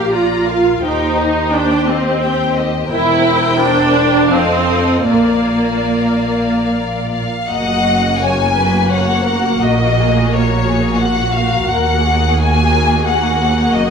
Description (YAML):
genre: classical, slow romantic movement for string orchestra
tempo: 73-91 BPM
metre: 3/4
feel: rubato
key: Bb major, F# major from 7.5 s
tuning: A4 = 440 Hz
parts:
  - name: warm symphonic violin section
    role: melody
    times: 0.0-13.9 s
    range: C#5 to Bb5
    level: -19 LUFS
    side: left 4 dB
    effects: none
  - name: warm studio violin section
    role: second line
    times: 0.0-13.9 s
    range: F4 to F5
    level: -21 LUFS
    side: left 4 dB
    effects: none
  - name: rich studio viola section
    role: accompaniment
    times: 0.0-13.9 s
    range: Bb3 to G4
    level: -16 LUFS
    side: right 1 dB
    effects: none
  - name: clear symphonic double bass section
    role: bass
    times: 0.0-13.9 s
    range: E1 to Eb2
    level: -21 LUFS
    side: right 3 dB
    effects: none
  - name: rich symphonic cello section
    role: bass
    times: 0.0-13.9 s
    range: Eb2 to Bb2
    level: -22 LUFS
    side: right 2 dB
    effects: none
room: wet recital hall reverb, RT60 1.4 s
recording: minimal, uncompressed stereo recording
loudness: -12 LUFS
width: side -6 dB against mid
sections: 0.0-7.5 A section; 7.5-13.9 B section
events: none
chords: 0.0 Bb; 0.8 Cm/Eb; 2.9 C7/E; 4.3 F7; 5.1 Bb; 7.5 F#; 9.6 F#/A#; 11.7 D#m